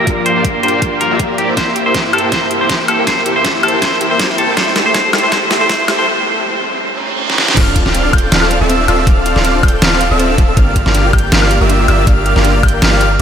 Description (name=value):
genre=future bass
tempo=160 BPM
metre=4/4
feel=swing 54% on 16ths, half-time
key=D minor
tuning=A4 = 439 Hz
part: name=clean electric guitar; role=melody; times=0.0-6.1 s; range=G4 to C5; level=-16 LUFS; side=equal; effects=sidechain pumping, low-pass filter, analog delay
part: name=dark baby grand piano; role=accompaniment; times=0.0-1.4 s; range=G3 to Bb4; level=-24 LUFS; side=left 2 dB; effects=analog chorus, sidechain pumping, ping-pong delay
part: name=ethereal airy pad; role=sustained chords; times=0.0-7.5 s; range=F2 to Bb3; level=-27 LUFS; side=equal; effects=ensemble chorus, built-in reverb, phaser, sidechain pumping
part: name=dense compressed supersaw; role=riff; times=0.0-13.2 s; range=A3 to G5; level=-17 LUFS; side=right 1 dB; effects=sidechain pumping, low-pass filter, ping-pong delay
part: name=dubstep drum kit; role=drums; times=0.1-13.2 s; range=crash cymbal, hi-hat, snare drum, woodblock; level=-16 LUFS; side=equal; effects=none
part: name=electronic kick drum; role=drums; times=0.1-12.7 s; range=none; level=-14 LUFS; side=equal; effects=none
part: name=soft round pluck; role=arpeggios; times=1.6-13.2 s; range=C4 to Bb4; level=-24 LUFS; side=left 4 dB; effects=chorus, sidechain pumping, ping-pong delay
part: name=riser, reverse cymbal and sub drop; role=sound effects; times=5.9-9.1 s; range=none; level=-23 LUFS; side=right 3 dB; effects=none
part: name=airy dreamy lead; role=arpeggios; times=7.6-13.2 s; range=E6 to G6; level=-19 LUFS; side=equal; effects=chorus, sidechain pumping
part: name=warm 808-style bass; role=bass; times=7.6-13.2 s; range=D1 to G1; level=-15 LUFS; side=equal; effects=sidechain pumping
room=wet huge ambient reverb, RT60 4.9 s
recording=dreamy mix soaked in reverb, high-pass filter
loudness=-10 LUFS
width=side -8 dB against mid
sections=0.0-7.6 A section; 7.6-13.2 B section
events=build-up 0.0-7.6; drum fill 1.6-6.1, 7.3; riser 5.9-7.6; break 6.1-7.6; reverse cymbal 6.8-7.6; drop 7.6-13.2; impact 7.6-9.1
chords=0.0 Gm7; 1.4 C7/G; 4.6 F69; 7.6 Dm7; 10.6 Gm7